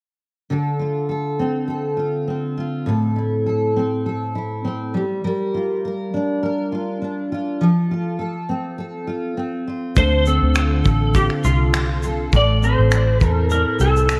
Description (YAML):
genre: acoustic pop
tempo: 102 BPM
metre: 4/4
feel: swing 55% on 16ths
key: D minor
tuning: A4 = 436 Hz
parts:
  - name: fingerpicked steel-string acoustic guitar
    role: accompaniment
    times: 0.5-14.2 s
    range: A2 to Bb4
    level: -23 LUFS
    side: equal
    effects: double-tracked
  - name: clean lap steel guitar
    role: melody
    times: 10.0-14.2 s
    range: F4 to D5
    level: -24 LUFS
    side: equal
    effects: ensemble chorus, tape echo
  - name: vintage muted fingered electric bass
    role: bass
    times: 10.0-14.2 s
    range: A1 to E2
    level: -20 LUFS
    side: equal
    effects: none
  - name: cloth-damped thuddy drum kit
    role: drums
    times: 10.0-14.2 s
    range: finger snaps, kick drum, shaker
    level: -24 LUFS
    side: equal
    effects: none
room: moderate plate reverb, RT60 1.6 s, small room ambience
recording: dreamy mix soaked in reverb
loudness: -20 LUFS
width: mono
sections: 0.5-10.0 A section; 10.0-14.2 B section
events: none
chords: 0.5 Dm7; 2.9 Am; 4.9 Gm7; 7.6 F; 10.0 Dm7; 12.3 Am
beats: | 0.51 1.10 1.69 2.29 | 2.88 3.47 4.06 4.65 | 5.24 5.83 6.42 7.02 | 7.61 8.20 8.79 9.38 | 9.97 10.56 11.15 11.74 | 12.33 12.92 13.51 14.10